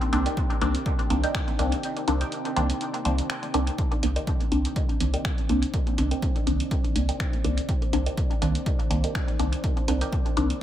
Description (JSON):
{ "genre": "dub techno", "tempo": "123 BPM", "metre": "4/4", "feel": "swing 54% on 16ths", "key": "C minor", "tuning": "A4 = 441 Hz", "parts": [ { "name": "deep dark ambient pad", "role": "sustained chords", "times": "0.0-10.6 s", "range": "C4 to G5", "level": "-34 LUFS", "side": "right 1 dB", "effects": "chorus, built-in reverb, sidechain pumping" }, { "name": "punchy analog drum machine", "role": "drums", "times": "0.0-10.6 s", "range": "finger snaps, hi-hat", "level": "-36 LUFS", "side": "right 1 dB", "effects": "dub echo" }, { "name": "filtered dub chord stab", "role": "stabs", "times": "0.1-10.5 s", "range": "Eb3 to D4", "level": "-28 LUFS", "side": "left 1 dB", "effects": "phaser, cassette tape, sidechain pumping, dub echo" }, { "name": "warm sub bass", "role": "bass", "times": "0.1-10.5 s", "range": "C2", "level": "-26 LUFS", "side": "equal", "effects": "sidechain pumping" }, { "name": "filtered dub chord stab", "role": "riff", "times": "0.3-10.1 s", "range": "Bb4 to G5", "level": "-36 LUFS", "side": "right 3 dB", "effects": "phaser, analog chorus, sidechain pumping, dub echo" }, { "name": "electronic kick drum", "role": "drums", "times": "0.4-10.2 s", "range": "none", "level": "-26 LUFS", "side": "equal", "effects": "none" } ], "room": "light reverb", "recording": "none", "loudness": "-23 LUFS", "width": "side -11 dB against mid", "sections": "0.0-10.6 A section", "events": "kick drops out 1.8-3.8", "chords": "0.0 Cm9", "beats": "0.37 0.86 1.35 | 1.83 2.32 2.81 3.30 | 3.79 4.27 4.76 5.25 | 5.74 6.22 6.71 7.20 | 7.69 8.18 8.66 9.15 | 9.64 10.13 10.61" }